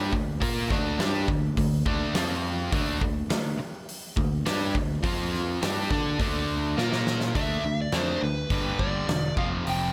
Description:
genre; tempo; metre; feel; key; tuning
hard rock; 104 BPM; 4/4; straight; D minor; A4 = 442 Hz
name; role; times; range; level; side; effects
cranked stack guitar; riff; 0.0-9.9 s; F2 to D5; -33 LUFS; equal; overdrive
overdriven semi-hollow guitar; riff; 0.0-9.9 s; F2 to D5; -35 LUFS; equal; none
picked electric bass; bass; 0.0-9.9 s; E1 to D3; -33 LUFS; equal; none
huge arena drum kit; drums; 0.1-9.8 s; hi-hat, kick drum, snare drum; -32 LUFS; equal; none
dark smooth lead guitar; melody; 7.4-9.9 s; B4 to G5; -33 LUFS; equal; overdrive, slapback echo
room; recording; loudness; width
light reverb, small room ambience; none; -27 LUFS; mono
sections
0.0-7.4 A section; 7.4-9.9 B section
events
drum fill 6.8-7.4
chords
0.0 Dm; 2.2 F5; 2.7 D5; 5.0 F5; 5.6 D5; 6.8 Bb5; 7.4 Dm; 8.5 G5; 9.4 F5

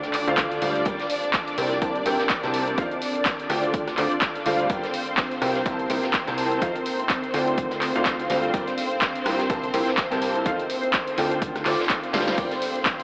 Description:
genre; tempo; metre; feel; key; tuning
piano house; 125 BPM; 4/4; swing 57% on 16ths; G minor; A4 = 438 Hz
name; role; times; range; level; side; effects
analog string pad; sustained chords; 0.0-13.0 s; C4 to D5; -28 LUFS; equal; ensemble chorus, sidechain pumping
clear grand piano; riff; 0.0-12.5 s; C3 to A5; -26 LUFS; equal; ensemble chorus, sidechain pumping, tape echo
plucky analog bass; bass; 0.0-12.5 s; G1 to F2; -31 LUFS; equal; sidechain pumping
punchy analog drum machine; drums; 0.0-13.0 s; crash cymbal, handclaps, hi-hat, ride cymbal, rim click, snare drum; -27 LUFS; equal; none
vintage brush drum kit; drums; 0.0-13.0 s; hi-hat, snare drum; -36 LUFS; equal; none
deep dark ambient pad; texture; 0.1-13.0 s; C4 to F5; -33 LUFS; equal; none
electronic kick drum; drums; 0.4-13.0 s; none; -30 LUFS; equal; overdrive
room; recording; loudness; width
wet huge ambient reverb, RT60 4.0 s; dreamy mix soaked in reverb, AM radio sound; -21 LUFS; side -34 dB against mid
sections
0.0-13.0 A section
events
drum fill 12.1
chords
0.0 Dm7; 0.9 Gm7; 1.6 C7; 2.8 F7; 3.7 Dm7; 4.7 Gm7; 5.4 C7; 6.6 F7; 7.6 Dm7; 8.5 Gm7; 9.3 C7; 10.5 F7; 11.4 Dm7; 12.4 Gm7

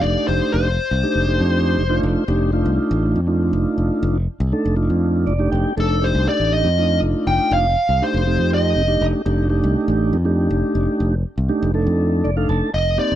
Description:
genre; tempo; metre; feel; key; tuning
electric jazz fusion; 241 BPM (eighths); 7/8; straight; F mixolydian; A4 = 439 Hz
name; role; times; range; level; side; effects
smooth overdriven lead guitar; melody; 0.0-2.0, 5.8-9.0, 12.7-13.2 s; A4 to G5; -21 LUFS; left 1 dB; tape echo
mellow tonewheel organ; accompaniment; 0.0-13.2 s; A3 to A5; -20 LUFS; right 2 dB; slow rotary speaker
modern bright fingered electric bass; bass; 0.0-13.2 s; F1 to F2; -19 LUFS; equal; none
room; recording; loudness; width
little or no reverb; dry, close 1970s-style studio recording; -16 LUFS; side -12 dB against mid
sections
0.0-12.7 A section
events
tonewheel organ fill 5.0-5.8, 12.0-12.7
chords
0.0 F13

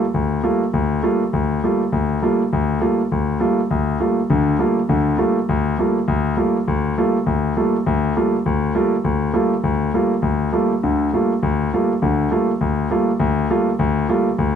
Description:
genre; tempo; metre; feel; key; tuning
jazz; 202 BPM; 4/4; swing 60% on 8ths; G minor; A4 = 441 Hz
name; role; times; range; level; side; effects
warm concert grand piano; solo; 0.0-14.6 s; D2 to F4; -16 LUFS; equal; none
room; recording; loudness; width
light reverb; dark, warm production; -17 LUFS; side -8 dB against mid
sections
0.0-14.6 A section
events
none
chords
0.0 Gm9

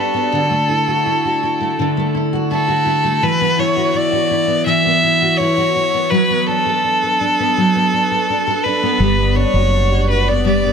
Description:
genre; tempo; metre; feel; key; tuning
acoustic pop; 83 BPM; 4/4; straight; D major; A4 = 440 Hz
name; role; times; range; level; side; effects
rich violin; melody; 0.0-10.7 s; A4 to E5; -16 LUFS; equal; tape echo
fingerpicked steel-string acoustic guitar; accompaniment; 0.0-10.7 s; D3 to A4; -18 LUFS; equal; double-tracked left and right
fingered electric bass; bass; 9.0-10.7 s; F#1 to G1; -16 LUFS; equal; none
room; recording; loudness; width
moderate small room reverb, RT60 0.5 s; none; -13 LUFS; side -6 dB against mid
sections
0.0-10.7 A section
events
none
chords
0.3 Dadd9; 3.2 Esus2; 6.1 Bm7/F#; 9.0 Gmaj7

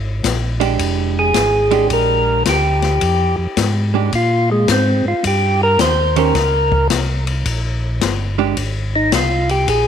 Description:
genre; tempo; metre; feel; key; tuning
soul jazz organ trio; 108 BPM; 4/4; swing 67% on 8ths; Bb mixolydian; A4 = 438 Hz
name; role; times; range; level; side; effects
mellow tonewheel organ; bass; 0.0-9.9 s; F1 to Bb2; -19 LUFS; equal; chorus vibrato, slow rotary speaker
open jazz drum kit; drums; 0.2-9.9 s; hi-hat, kick drum, ride cymbal, snare drum; -22 LUFS; left 7 dB; none
vintage hollow-body jazz guitar; accompaniment; 0.6-8.6 s; Eb3 to C5; -19 LUFS; right 14 dB; none
percussive tonewheel organ; melody; 1.2-9.9 s; Ab3 to C5; -16 LUFS; equal; slow rotary speaker, tape echo
room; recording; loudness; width
light reverb, studio reverb; 1960s-style stereo with parts hard left and right; -14 LUFS; side -8 dB against mid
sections
0.0-9.9 A section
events
tonewheel organ solo 0.0-9.9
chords
0.0 Bb6; 3.0 Fm; 4.1 Ab69; 5.2 Eb6; 7.5 Bb7sus2

